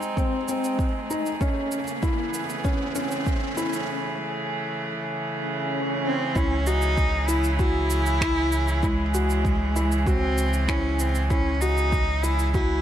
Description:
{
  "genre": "piano and strings electronica",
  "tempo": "97 BPM",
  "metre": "4/4",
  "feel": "straight",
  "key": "C# harmonic minor",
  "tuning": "A4 = 440 Hz",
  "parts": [
    { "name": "warm string quartet", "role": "sustained chords", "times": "0.0-12.8 s", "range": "C#3 to G#4", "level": "-30 LUFS", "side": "right 1 dB", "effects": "sidechain pumping" },
    { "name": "electronic shaker and finger snaps", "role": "drums", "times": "0.0-12.7 s", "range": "none", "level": "-35 LUFS", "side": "right 2 dB", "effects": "high-pass filter on perc, high-pass filter on snare, high-pass filter on room" },
    { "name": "riser and swell", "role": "sound effects", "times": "0.0-6.4 s", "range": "none", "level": "-33 LUFS", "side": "equal", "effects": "none" },
    { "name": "felt-muted upright piano", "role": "riff", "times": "0.2-12.8 s", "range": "B#3 to F#4", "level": "-29 LUFS", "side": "left 2 dB", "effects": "tape echo" },
    { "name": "electronic kick drum", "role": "drums", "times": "0.2-12.7 s", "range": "none", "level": "-25 LUFS", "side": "equal", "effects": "none" },
    { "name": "rich cello", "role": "melody", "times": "6.1-12.8 s", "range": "G#3 to E4", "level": "-26 LUFS", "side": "equal", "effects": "none" },
    { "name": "round analog bass", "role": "bass", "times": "6.4-12.8 s", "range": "C#2", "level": "-25 LUFS", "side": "equal", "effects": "sidechain pumping" }
  ],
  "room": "light reverb, small room ambience",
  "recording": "none",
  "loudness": "-22 LUFS",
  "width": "side -10 dB against mid",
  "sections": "0.0-6.4 A section; 6.4-12.8 B section",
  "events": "build-up 0.0-6.4; riser 0.0-3.9; swell 5.4-6.4; drop 6.4-12.8",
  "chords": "0.0 G#; 1.4 Amaj7/C#; 6.4 C#m"
}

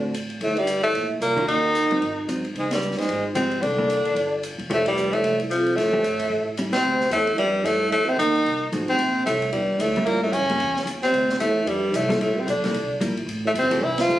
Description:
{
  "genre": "jazz, small-group swing and bop",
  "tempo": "224 BPM",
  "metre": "4/4",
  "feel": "swing 59% on 8ths",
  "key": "D minor from 6.8 s",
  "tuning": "A4 = 435 Hz",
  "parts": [
    { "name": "bright tenor saxophone", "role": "melody", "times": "0.0-14.2 s", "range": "F3 to F4", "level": "-22 LUFS", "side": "left 1 dB", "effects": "plate reverb" },
    { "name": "trombone with cup mute", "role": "second line", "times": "0.0-14.2 s", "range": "F2 to F3", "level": "-26 LUFS", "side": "right 2 dB", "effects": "none" },
    { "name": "hollow-body jazz guitar", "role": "accompaniment", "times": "0.0-6.7, 8.7-14.2 s", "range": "D3 to A4", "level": "-27 LUFS", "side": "left 1 dB", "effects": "none" },
    { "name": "upright bass", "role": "bass", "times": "0.0-14.2 s", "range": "Eb1 to A2", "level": "-32 LUFS", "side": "equal", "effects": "none" },
    { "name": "open jazz drum kit", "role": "drums", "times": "0.1-14.2 s", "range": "hi-hat, kick drum, ride cymbal, snare drum", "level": "-34 LUFS", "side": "left 1 dB", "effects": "none" }
  ],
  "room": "moderate studio reverb, RT60 0.7 s",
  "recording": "recorded on a phone in the room, studio reverb, compression",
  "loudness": "-20 LUFS",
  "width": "side -14 dB against mid",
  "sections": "0.0-6.8 A section; 6.8-14.2 B section",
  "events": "band accent 2.7, 4.8, 6.7, 13.9",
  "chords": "0.4 Gm; 1.5 Ebm7; 2.0 Ab7; 2.6 Dbmaj7; 3.6 C9; 4.7 F69; 6.3 A7; 6.8 Dm11; 7.9 F7b9; 9.0 Bbmaj9; 10.1 A7b9; 11.1 Dm9; 12.2 Gm9; 12.7 C7; 13.3 Fmaj9"
}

